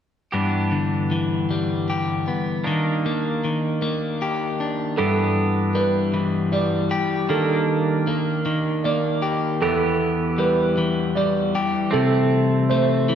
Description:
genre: rock.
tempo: 52 BPM (dotted quarters).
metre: 6/8.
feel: straight.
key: unclear.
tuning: A4 = 438 Hz.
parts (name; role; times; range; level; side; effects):
pedal steel guitar; sustained chords; 0.3-13.2 s; Eb3 to G4; -26 LUFS; right 2 dB; none.
electric guitar at the edge of break-up; arpeggios; 0.3-13.2 s; E2 to G4; -21 LUFS; left 3 dB; none.
felt-muted upright piano; arpeggios; 5.0-13.2 s; A4 to D5; -24 LUFS; right 6 dB; none.
room: wet scoring stage reverb, RT60 1.8 s.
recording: recorded in a church or concert hall.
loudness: -19 LUFS.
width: side -8 dB against mid.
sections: 0.3-5.0 A section; 5.0-13.2 B section.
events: none.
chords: 0.3 G6; 2.7 Ebmaj7; 5.0 G6; 7.3 Ebmaj7; 9.6 Em7; 11.9 C6.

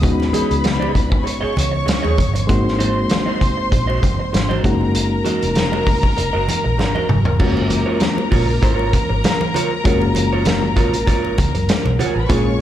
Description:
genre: lush 1970s-style soul.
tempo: 98 BPM.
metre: 4/4.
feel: swing 54% on 16ths.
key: unclear.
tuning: A4 = 442 Hz.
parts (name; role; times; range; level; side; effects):
warm studio string section; second line; 0.0-12.6 s; Gb4 to C#6; -23 LUFS; left 2 dB; none.
reed electric piano; accompaniment; 0.0-12.6 s; G#3 to Ab4; -22 LUFS; left 2 dB; medium tremolo, slapback echo.
vintage muted fingered electric bass; bass; 0.0-12.6 s; F1 to Gb2; -21 LUFS; equal; none.
vintage drum kit; drums; 0.0-12.4 s; crash cymbal, hi-hat, kick drum, snare drum, toms; -19 LUFS; equal; none.
congas; percussion; 0.0-12.4 s; none; -27 LUFS; right 5 dB; slapback echo.
electric guitar through a small old amp; riff; 0.3-12.6 s; F4 to D#5; -25 LUFS; right 5 dB; slapback echo.
room: light reverb, small room ambience.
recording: live gig heard through the venue's PA, club reverb.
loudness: -15 LUFS.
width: side -11 dB against mid.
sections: 0.0-7.4 A section; 7.4-12.6 B section.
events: drum fill 6.8-7.4.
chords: 0.0 B69; 2.5 Ab7; 4.6 Gb6; 7.4 Gbmaj7.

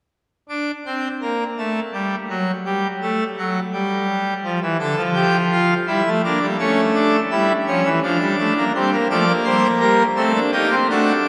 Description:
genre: classical, baroque-style 4-part fugue for pipe organ.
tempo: 84 BPM.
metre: 3/4.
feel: straight.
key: unclear.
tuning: A4 = 440 Hz.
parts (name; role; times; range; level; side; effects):
pipe organ, full organ; solo; 0.5-11.3 s; D3 to D5; -19 LUFS; equal; none.
room: wet cathedral reverb, RT60 4.2 s.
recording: none.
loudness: -19 LUFS.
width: mono.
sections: 0.1-11.3 A section.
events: none.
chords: 0.1 N.C.; 4.4 Dm; 5.9 Em7b5/G; 6.6 A; 8.0 Dm/F; 8.7 Gm; 10.2 Am7b5.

